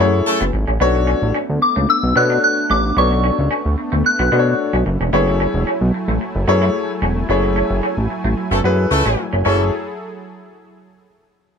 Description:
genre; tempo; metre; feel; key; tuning
funk; 111 BPM; 4/4; straight; F# minor; A4 = 443 Hz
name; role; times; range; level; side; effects
warm grand piano; accompaniment; 0.0-9.7 s; D4 to C#5; -19 LUFS; left 5 dB; none
warm analog pad; sustained chords; 0.0-9.7 s; F#3 to G#5; -25 LUFS; equal; chorus
clean electric guitar; riff; 0.0-9.6 s; A3 to E4; -23 LUFS; right 2 dB; wide subtle chorus
fat analog bass; bass; 0.0-9.7 s; E1 to B2; -18 LUFS; equal; none
clear horn section; second line; 0.3-0.4, 8.5-9.6 s; E3 to A4; -20 LUFS; equal; none
soft synth bell; melody; 1.6-4.6 s; C#6 to F#6; -17 LUFS; left 1 dB; chorus, phaser, slapback echo
room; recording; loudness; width
moderate small room reverb, RT60 0.5 s; none; -15 LUFS; side -6 dB against mid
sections
0.0-9.5 A section; 9.5-11.6 B section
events
band accent 0.0-0.8, 7.3-9.5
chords
0.0 F#m9; 0.8 Bm9; 5.1 F#m9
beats
0.27 | 0.81 1.35 1.89 2.43 | 2.97 3.51 4.05 4.59 | 5.13 5.67 6.21 6.75 | 7.29 7.83 8.38 8.92 | 9.46

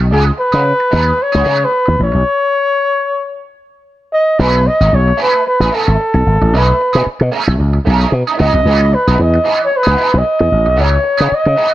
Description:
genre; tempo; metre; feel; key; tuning
disco; 113 BPM; 4/4; swing 56% on 16ths; unclear; A4 = 445 Hz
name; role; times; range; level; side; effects
electric guitar at the edge of break-up; accompaniment; 0.0-11.7 s; E3 to G#4; -19 LUFS; right 5 dB; wah, analog chorus
slap bass with an envelope filter; bass; 0.0-11.5 s; G#1 to C#3; -12 LUFS; equal; none
breathy flugelhorn; melody; 0.1-11.7 s; G#4 to D#5; -13 LUFS; equal; none
room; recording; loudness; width
light reverb, studio reverb; none; -10 LUFS; side -14 dB against mid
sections
0.0-4.4 A section; 4.4-11.7 B section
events
stop 2.3-4.4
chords
0.1 Amaj9#11 (rootless); 2.3 N.C.; 4.4 B13; 8.4 C#m9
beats
| 0.11 0.65 1.18 1.72 | 2.26 2.79 3.33 3.86 | 4.40 4.93 5.46 6.00 | 6.53 7.06 7.59 8.12 | 8.66 9.19 9.72 10.25 | 10.78 11.31

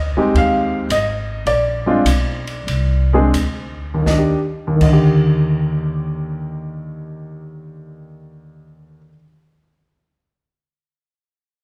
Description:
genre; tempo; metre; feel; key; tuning
jazz piano trio; 80-113 BPM; 4/4; swing 68% on 8ths; Eb major; A4 = 440 Hz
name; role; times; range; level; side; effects
warm baby grand piano; melody; 0.0-9.2 s; Eb2 to F5; -19 LUFS; equal; none
upright bass; bass; 0.0-9.1 s; Ab1 to Eb2; -23 LUFS; equal; none
open jazz drum kit; drums; 0.4-5.1 s; crash cymbal, hi-hat, kick drum, ride cymbal, snare drum; -29 LUFS; equal; none
room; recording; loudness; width
wet recital hall reverb, RT60 1.6 s; recorded in a church or concert hall; -17 LUFS; mono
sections
0.0-4.1 A section; 4.1-10.0 B section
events
slowing down 0.0-4.1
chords
0.0 Fm7; 1.5 Bb9; 4.1 Ebmaj7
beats
0.35 0.90 | 1.46 2.06 2.68 3.35 | 4.07 4.81 5.56 6.30 | 7.05 7.80 8.54

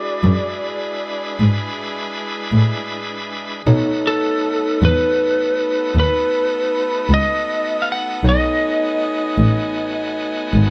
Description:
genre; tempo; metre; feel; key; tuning
blues; 52 BPM (dotted quarters); 12/8; straight; unclear; A4 = 440 Hz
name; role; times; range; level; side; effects
lightly driven lead guitar; melody; 0.0-10.5 s; A4 to F#5; -22 LUFS; equal; none
tine electric piano; accompaniment; 0.0-10.7 s; D#4 to D5; -27 LUFS; equal; overdrive
bright tonewheel organ; sustained chords; 0.0-10.7 s; G#3 to B4; -31 LUFS; equal; slow rotary speaker, overdrive
warm horn section; sustained chords; 0.0-10.7 s; B3 to G#5; -33 LUFS; equal; none
dark double bass; bass; 0.2-10.6 s; G#1 to B2; -18 LUFS; equal; none
room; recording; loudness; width
light reverb; none; -19 LUFS; mono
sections
0.0-10.7 A section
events
none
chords
0.0 E7; 3.7 B7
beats
0.23 1.38 2.52 | 3.67 4.82 5.96 7.11 | 8.25 9.40 10.55

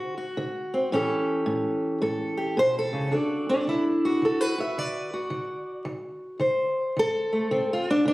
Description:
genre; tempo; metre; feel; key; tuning
acoustic country blues, solo or duo; 109 BPM; 4/4; swing 64% on 8ths; D major; A4 = 441 Hz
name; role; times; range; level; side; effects
fingerpicked steel-string acoustic guitar; solo; 0.0-8.1 s; A2 to E5; -24 LUFS; equal; none
room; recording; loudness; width
light reverb; recorded on a phone in the room, studio reverb, compression; -24 LUFS; side -19 dB against mid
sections
0.0-3.1 A section; 3.1-8.1 B section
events
steel-string acoustic guitar solo 0.0-3.1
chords
0.0 D7; 0.9 A7; 3.1 D7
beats
0.38 | 0.93 1.47 2.02 2.57 | 3.12 3.67 4.22 4.77 | 5.32 5.87 6.42 6.97 | 7.51 8.06

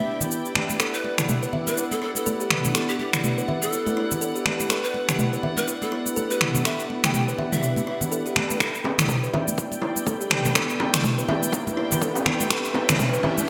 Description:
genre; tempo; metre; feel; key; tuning
afro house; 123 BPM; 4/4; swing 58% on 16ths; E minor; A4 = 440 Hz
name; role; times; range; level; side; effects
breathy bright pan flute; melody; 0.0-8.0 s; G4 to G5; -33 LUFS; equal; delay
warm studio string section; sustained chords; 0.0-13.5 s; E4 to G5; -35 LUFS; equal; sidechain pumping, low-pass filter
mellow synth brass; stabs; 0.0-13.5 s; B3 to B4; -33 LUFS; equal; chorus, phaser, sidechain pumping, delay
deep house drum kit; drums; 0.2-13.5 s; finger snaps, shaker, toms; -26 LUFS; equal; overdrive, gated reverb
congas; percussion; 0.2-13.5 s; none; -33 LUFS; equal; none
kalimba; arpeggios; 0.8-13.4 s; E4 to E5; -34 LUFS; equal; sidechain pumping, low-pass filter, delay
electronic kick drum; drums; 8.6-13.1 s; none; -35 LUFS; equal; none
bongos; percussion; 8.6-13.3 s; none; -33 LUFS; equal; none
riser; sound effects; 10.0-13.5 s; none; -36 LUFS; equal; none
room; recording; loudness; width
wet lush hall reverb, RT60 1.7 s; bright 1980s-style digital production; -24 LUFS; mono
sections
0.0-8.6 A section; 8.6-13.5 B section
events
filter sweep on analog polysynth 0.0-8.6; build-up 8.6-13.5; filter sweep on kalimba 8.6-13.5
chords
0.0 Em7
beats
0.31 | 0.80 1.29 1.77 2.26 | 2.75 3.24 3.73 4.21 | 4.70 5.19 5.68 6.16 | 6.65 7.14 7.63 8.12 | 8.60 9.09 9.58 10.07 | 10.55 11.04 11.53 12.02 | 12.51 12.99 13.48

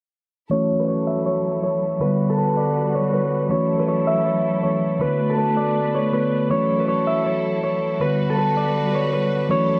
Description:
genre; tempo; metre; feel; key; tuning
hip hop; 160 BPM; 4/4; half-time; F# phrygian; A4 = 440 Hz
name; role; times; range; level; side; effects
concert harp; melody; 0.5-9.8 s; A4 to E5; -24 LUFS; equal; low-pass filter
mellow tine electric piano; accompaniment; 0.5-9.8 s; D3 to F#4; -25 LUFS; equal; phaser, low-pass filter
bright symphonic string section; sustained chords; 0.5-9.8 s; F#3 to B4; -30 LUFS; equal; low-pass filter
room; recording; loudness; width
light reverb, studio reverb; dark, warm production; -21 LUFS; mono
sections
0.5-9.8 A section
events
filter sweep 0.5-9.8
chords
0.5 F#m7; 2.0 Gmaj7; 3.5 F#m7; 5.0 Bm7; 6.5 F#m7; 8.0 Gmaj7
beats
| 0.51 0.88 1.26 1.63 | 2.01 2.38 2.76 3.13 | 3.51 3.88 4.26 4.63 | 5.01 5.38 5.76 6.13 | 6.51 6.88 7.26 7.63 | 8.01 8.38 8.76 9.13 | 9.51

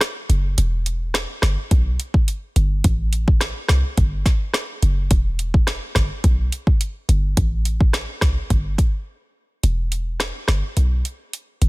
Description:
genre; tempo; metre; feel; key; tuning
dancehall; 106 BPM; 4/4; straight; E minor; A4 = 441 Hz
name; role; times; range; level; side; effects
afro-pop drum kit; drums; 0.0-11.7 s; hi-hat, kick drum, rim click, snare drum; -19 LUFS; equal; none
short 808-style bass; bass; 0.3-11.7 s; E1 to C2; -19 LUFS; equal; none
room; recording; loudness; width
digital ambience; dense, heavily limited modern master; -18 LUFS; side -23 dB against mid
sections
0.0-9.6 A section; 9.6-11.7 B section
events
kick muted 0.6-1.7, 9.6-11.7; break 9.1-9.6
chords
none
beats
0.01 | 0.58 1.15 1.71 2.28 | 2.84 3.41 3.98 4.54 | 5.11 5.67 6.24 6.80 | 7.37 7.94 8.50 9.07 | 9.63 10.20 10.77 11.33

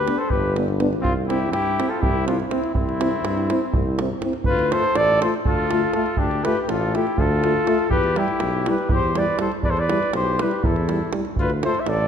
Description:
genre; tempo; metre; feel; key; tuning
balkan folk, Balkan brass band; 244 BPM (eighths); 7/8; straight; unclear; A4 = 440 Hz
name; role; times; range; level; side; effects
warm flugelhorn; melody; 0.0-12.1 s; E4 to E5; -24 LUFS; equal; none
mellow trumpet; second line; 0.0-12.1 s; C4 to C5; -28 LUFS; left 4 dB; none
mellow tuba; bass; 0.0-12.1 s; G1 to G2; -26 LUFS; equal; none
mellow French horn; accompaniment; 0.1-11.7 s; D4 to F4; -28 LUFS; left 6 dB; none
mellow euphonium; accompaniment; 0.1-11.7 s; G3 to C4; -29 LUFS; right 5 dB; none
davul; percussion; 0.1-12.0 s; none; -26 LUFS; right 2 dB; none
room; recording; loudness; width
moderate concert hall reverb, RT60 2.1 s; minimal, uncompressed stereo recording; -19 LUFS; side -8 dB against mid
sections
0.0-4.5 A section; 4.5-12.1 B section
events
none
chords
0.0 G; 1.0 C; 4.5 Dm; 7.9 Em; 11.4 Dm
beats
0.04 0.28 0.53 0.77 | 1.02 1.26 1.51 1.75 2.00 2.24 2.49 | 2.73 2.98 3.22 3.47 3.71 3.96 4.21 | 4.45 4.70 4.94 5.19 5.44 5.68 5.93 | 6.17 6.42 6.67 6.91 7.16 7.41 7.65 | 7.90 8.15 8.39 8.64 8.89 9.14 9.38 | 9.63 9.88 10.13 10.37 10.62 10.87 11.12 | 11.36 11.61 11.86

